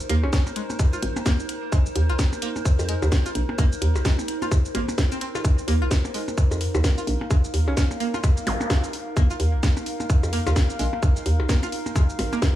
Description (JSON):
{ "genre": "minimal techno", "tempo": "129 BPM", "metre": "4/4", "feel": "swing 60% on 16ths", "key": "unclear", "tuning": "A4 = 443 Hz", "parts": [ { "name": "garage drum kit", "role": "drums", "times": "0.0-12.5 s", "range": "hi-hat, shaker, snare drum", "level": "-30 LUFS", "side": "equal", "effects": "studio reverb" }, { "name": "warbly tape-like pad", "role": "texture", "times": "0.0-12.6 s", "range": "Eb4 to F5", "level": "-31 LUFS", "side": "equal", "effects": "chorus, built-in reverb, sidechain pumping" }, { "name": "string-like resonator pluck", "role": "riff", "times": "0.1-12.4 s", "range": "Ab3 to F4", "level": "-32 LUFS", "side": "right 1 dB", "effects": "chorus, phaser, sidechain pumping, dub echo" }, { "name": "hollow knocking FM bass", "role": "bass", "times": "0.1-12.3 s", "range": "Ab1 to F2", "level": "-23 LUFS", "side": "equal", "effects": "tube saturation, sidechain pumping" }, { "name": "mellow alto saxophone", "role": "melody", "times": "0.2-0.4, 7.7-7.9 s", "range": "Db4", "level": "-34 LUFS", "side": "equal", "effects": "dub echo" }, { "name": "percussion blips", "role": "percussion", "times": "0.2-12.4 s", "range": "none", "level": "-33 LUFS", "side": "left 2 dB", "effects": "studio reverb, dub echo" }, { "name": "electronic kick drum", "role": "drums", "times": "0.3-12.5 s", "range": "none", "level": "-20 LUFS", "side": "equal", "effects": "studio reverb" }, { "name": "zap", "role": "sound effects", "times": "8.5-8.6 s", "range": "none", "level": "-32 LUFS", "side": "equal", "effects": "none" } ], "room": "little or no reverb", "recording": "small room ambience", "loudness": "-20 LUFS", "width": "side -13 dB against mid", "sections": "0.0-12.6 A section", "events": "none", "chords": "0.0 Bbsus4", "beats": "0.33 0.79 1.26 | 1.72 2.19 2.65 3.12 | 3.58 4.05 4.51 4.98 | 5.45 5.91 6.38 6.84 | 7.31 7.77 8.24 8.70 | 9.17 9.63 10.10 10.56 | 11.03 11.49 11.96 12.42" }